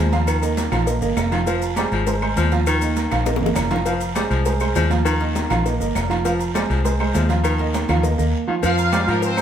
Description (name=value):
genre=latin, salsa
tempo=201 BPM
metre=4/4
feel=straight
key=F minor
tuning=A4 = 440 Hz
part: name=clear baritone saxophone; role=second line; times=0.0-9.3 s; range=Eb3 to G3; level=-26 LUFS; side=left 4 dB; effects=none
part: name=clear grand piano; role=accompaniment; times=0.0-9.4 s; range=F3 to F5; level=-23 LUFS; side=right 4 dB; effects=none
part: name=vintage muted fingered electric bass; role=bass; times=0.0-9.4 s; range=F1 to Ab2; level=-21 LUFS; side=left 1 dB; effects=none
part: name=agogo bells and timbales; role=percussion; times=0.1-9.4 s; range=none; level=-29 LUFS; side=right 5 dB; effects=none
part: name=congas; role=percussion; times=0.1-9.4 s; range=none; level=-29 LUFS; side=right 1 dB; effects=none
part: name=cowbell and bongos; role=percussion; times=0.1-9.4 s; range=none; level=-30 LUFS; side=left 4 dB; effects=none
part: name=guiro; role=percussion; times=0.1-9.4 s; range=none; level=-35 LUFS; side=right 2 dB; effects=none
part: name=maracas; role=percussion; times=0.1-9.4 s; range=none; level=-37 LUFS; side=left 6 dB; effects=none
part: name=claves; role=percussion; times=0.3-9.4 s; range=none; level=-35 LUFS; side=left 7 dB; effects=none
part: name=bright horn section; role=melody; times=8.6-9.4 s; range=Bb3 to F5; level=-21 LUFS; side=equal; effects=none
room=wet stone room reverb, RT60 1.0 s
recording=band playing live in one room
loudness=-17 LUFS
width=side -9 dB against mid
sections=0.0-8.6 A section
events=drum fill 3.0-3.9; break 8.3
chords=0.3 Ebsus2; 1.5 Fm; 2.7 Ebsus2; 3.9 Fm; 5.1 Ebsus2; 6.2 Fm; 7.4 Ebsus2; 8.6 Fm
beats=| 0.28 0.57 0.87 1.17 | 1.47 1.77 2.07 2.37 | 2.67 2.96 3.26 3.56 | 3.86 4.16 4.46 4.76 | 5.06 5.36 5.65 5.95 | 6.25 6.55 6.85 7.14 | 7.44 7.74 8.04 8.33 | 8.63 8.93 9.22